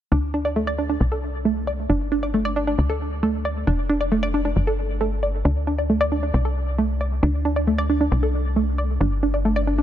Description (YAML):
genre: trance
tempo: 135 BPM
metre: 4/4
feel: straight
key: D minor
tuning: A4 = 439 Hz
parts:
  - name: analog pluck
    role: arpeggios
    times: 0.1-9.8 s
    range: A3 to D5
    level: -22 LUFS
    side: right 1 dB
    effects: chorus, dub echo
  - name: tight sequencer bass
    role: bass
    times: 0.1-9.8 s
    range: F1 to D2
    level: -23 LUFS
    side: left 1 dB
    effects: none
room: light reverb, digital ambience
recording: dense, heavily limited modern master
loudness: -20 LUFS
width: side -11 dB against mid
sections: 0.1-9.8 A section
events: none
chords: 0.1 D5; 1.0 N.C.; 1.9 G5; 2.8 D5; 3.7 N.C.; 5.5 D5; 6.3 N.C.; 7.2 D5; 8.1 N.C.; 9.0 G5